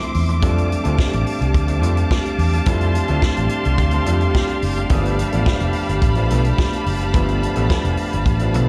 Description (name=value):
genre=disco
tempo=107 BPM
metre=4/4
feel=straight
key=unclear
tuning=A4 = 439 Hz
part: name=electric guitar at the edge of break-up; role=accompaniment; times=0.0-8.7 s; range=F3 to A4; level=-30 LUFS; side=equal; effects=plate reverb
part: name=overdriven tine electric piano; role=accompaniment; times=0.0-8.7 s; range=F3 to E4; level=-27 LUFS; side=equal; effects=slapback echo
part: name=clear studio string section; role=sustained chords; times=0.0-8.7 s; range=F3 to D6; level=-26 LUFS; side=equal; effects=plate reverb
part: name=vintage drum kit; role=drums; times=0.0-8.7 s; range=hi-hat, kick drum, snare drum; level=-23 LUFS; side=equal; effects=none
part: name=fingered electric bass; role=bass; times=0.2-8.7 s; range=F1 to F2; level=-21 LUFS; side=equal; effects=none
room=light reverb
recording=live gig heard through the venue's PA, club reverb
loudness=-18 LUFS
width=mono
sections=0.0-8.7 A section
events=none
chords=0.4 F69; 4.9 G9